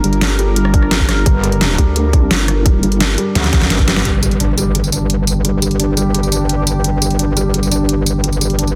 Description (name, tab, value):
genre	dark technical drum and bass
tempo	172 BPM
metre	4/4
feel	straight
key	G minor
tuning	A4 = 440 Hz
part	sweeping resonant pad	sustained chords	0.0-8.8 s	G3 to Bb4	-24 LUFS	equal	chorus, vintage 12-bit sampler grit, sidechain pumping
part	felt-muted upright piano	arpeggios	0.0-8.7 s	G3 to D4	-24 LUFS	equal	vintage 12-bit sampler grit, sidechain pumping, tape echo
part	vowel-sweep wobble bass	bass	0.0-3.2 s	G1 to D2	-18 LUFS	equal	chorus
part	dubstep drum kit	drums	0.0-8.7 s	hi-hat, rim click, snare drum, tambourine	-20 LUFS	equal	overdrive
part	electronic kick drum	drums	0.7-3.9 s	none	-15 LUFS	equal	none
part	metallic wobble bass	bass	1.3-8.8 s	G1 to D2	-19 LUFS	equal	chorus, tube saturation
part	impact	sound effects	4.1-5.4 s	none	-23 LUFS	equal	none
room	light reverb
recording	dense, heavily limited modern master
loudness	-15 LUFS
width	mono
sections	0.0-4.1 A section; 4.1-8.8 B section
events	drum fill 3.4-4.1; band accent 4.0; impact 4.1-5.4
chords	0.0 Gm; 4.1 G5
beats	0.21 0.56 0.91 | 1.26 1.61 1.96 2.31 | 2.66 3.00 3.35 3.70 | 4.05 4.40 4.75 5.10 | 5.45 5.80 6.14 6.49 | 6.84 7.19 7.54 7.89 | 8.24 8.59